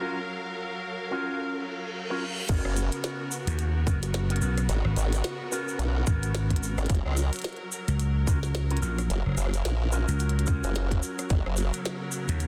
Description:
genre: glitch hop.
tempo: 109 BPM.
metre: 4/4.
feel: swing 58% on 16ths.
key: G# dorian.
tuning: A4 = 440 Hz.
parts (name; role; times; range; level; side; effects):
bright studio string section; sustained chords; 0.0-12.5 s; C#3 to E#5; -38 LUFS; equal; sidechain pumping.
electric guitar with an envelope filter; stabs; 0.0-11.3 s; B3 to A#4; -38 LUFS; equal; sidechain pumping, low-pass filter, tape echo.
reverse cymbal; sound effects; 1.6-2.5 s; none; -41 LUFS; equal; none.
formant-sweep wobble bass; bass; 2.5-11.7 s; F#1 to C#2; -29 LUFS; equal; chorus, tube saturation.
electronic kick drum; drums; 2.5-11.4 s; none; -28 LUFS; equal; overdrive, small room ambience.
glitchy drum kit; drums; 2.5-12.5 s; crash cymbal, hi-hat, rim click, snare drum; -39 LUFS; equal; overdrive, small room ambience, soft clipping on snare.
cabasa; percussion; 2.5-12.5 s; none; -41 LUFS; equal; none.
vintage slap bass; bass; 3.5-12.5 s; F#1 to D#2; -29 LUFS; equal; tube saturation.
room: light reverb, digital ambience.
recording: dense, heavily limited modern master.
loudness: -28 LUFS.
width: mono.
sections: 0.0-2.5 A section; 2.5-12.5 B section.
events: reverse cymbal 1.6-2.5; drop 2.5-12.5.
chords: 0.0 F#maj7; 2.5 G#m11; 6.9 F#maj7; 11.3 G#m11 (rootless).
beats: | 0.29 0.84 1.39 1.94 | 2.49 3.04 3.59 4.14 | 4.69 5.25 5.79 6.35 | 6.90 7.45 8.00 8.55 | 9.10 9.65 10.20 10.75 | 11.30 11.85 12.40.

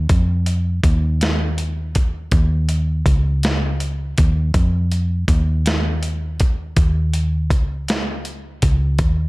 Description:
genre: slow six-eight R&B.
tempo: 54 BPM (dotted quarters).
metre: 6/8.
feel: straight.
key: unclear.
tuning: A4 = 441 Hz.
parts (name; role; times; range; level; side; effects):
vintage muted fingered electric bass; bass; 0.0-9.3 s; Db2 to F2; -18 LUFS; equal; none.
dusty soul sampler-style drum kit; drums; 0.1-9.2 s; hi-hat, kick drum, snare drum; -18 LUFS; equal; none.
room: little or no reverb.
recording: none.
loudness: -16 LUFS.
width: side -22 dB against mid.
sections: 0.0-9.3 A section.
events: none.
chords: none.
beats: | 0.10 1.21 | 2.32 3.43 | 4.54 5.66 | 6.77 7.88 | 8.99.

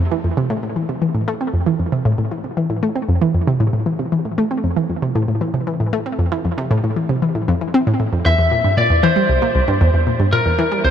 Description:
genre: ambient, sequencer-driven space music.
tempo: 116 BPM.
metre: 4/4.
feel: straight.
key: F major.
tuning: A4 = 440 Hz.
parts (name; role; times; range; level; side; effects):
analog pluck; riff; 0.0-10.9 s; C2 to C4; -16 LUFS; equal; chorus, analog delay.
lightly driven lead guitar; melody; 8.3-10.9 s; Bb4 to E5; -17 LUFS; equal; analog delay.
room: moderate huge ambient reverb, RT60 8.8 s.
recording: none.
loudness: -16 LUFS.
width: side -9 dB against mid.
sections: 0.0-10.9 A section.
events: none.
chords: 0.0 Fmaj7; 8.3 C7.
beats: 0.50 1.02 1.53 | 2.05 2.57 3.09 3.60 | 4.12 4.64 5.16 5.67 | 6.19 6.71 7.22 7.74 | 8.26 8.78 9.29 9.81 | 10.33 10.85.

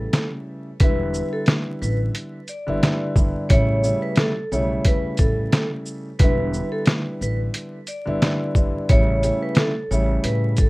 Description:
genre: hip hop, boom-bap hip-hop.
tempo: 89 BPM.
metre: 4/4.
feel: swing 55% on 16ths.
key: E dorian.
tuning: A4 = 440 Hz.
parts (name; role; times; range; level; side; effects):
vibraphone with medium hard mallets; melody; 0.0-10.7 s; A4 to D5; -26 LUFS; equal; high-pass filter, low-pass filter.
dark baby grand piano; accompaniment; 0.0-10.7 s; C#3 to E4; -26 LUFS; equal; cassette tape, high-pass filter, low-pass filter.
upright bass; bass; 0.0-10.7 s; E1 to A2; -24 LUFS; equal; none.
trip hop sampler-style drum kit; drums; 0.1-10.7 s; hi-hat, kick drum, shaker, snare drum; -19 LUFS; equal; none.
room: little or no reverb.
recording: rough home demo mix, vinyl crackle.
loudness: -18 LUFS.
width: side -22 dB against mid.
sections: 0.8-10.7 A section.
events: break 0.0-0.8.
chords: 0.0 A7; 0.8 Em7; 3.5 A7; 6.2 Em7; 8.9 A7.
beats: 0.13 | 0.80 1.48 2.15 2.83 | 3.50 4.17 4.85 5.52 | 6.20 6.87 7.54 8.22 | 8.89 9.57 10.24.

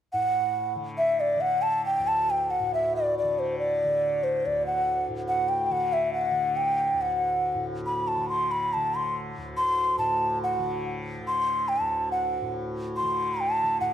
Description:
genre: indian classical, Hindustani.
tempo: 140 BPM.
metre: 4/4.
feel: straight.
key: D raga khamaj.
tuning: A4 = 439 Hz.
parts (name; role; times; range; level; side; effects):
mellow hollow bansuri; melody; 0.1-13.9 s; C5 to C6; -24 LUFS; equal; none.
tanpura; drone; 0.1-13.9 s; D2 to D3; -34 LUFS; left 1 dB; none.
room: moderate scoring stage reverb, RT60 1.9 s.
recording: dark, warm production.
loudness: -24 LUFS.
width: side -10 dB against mid.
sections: 0.1-13.8 A section.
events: none.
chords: none.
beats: | 0.13 0.56 0.99 1.43 | 1.86 2.29 2.72 3.15 | 3.58 4.01 4.44 4.87 | 5.30 5.73 6.16 6.58 | 7.01 7.44 7.87 8.29 | 8.72 9.15 9.57 10.00 | 10.42 10.85 11.27 11.69 | 12.12 12.54 12.96 13.38 | 13.80.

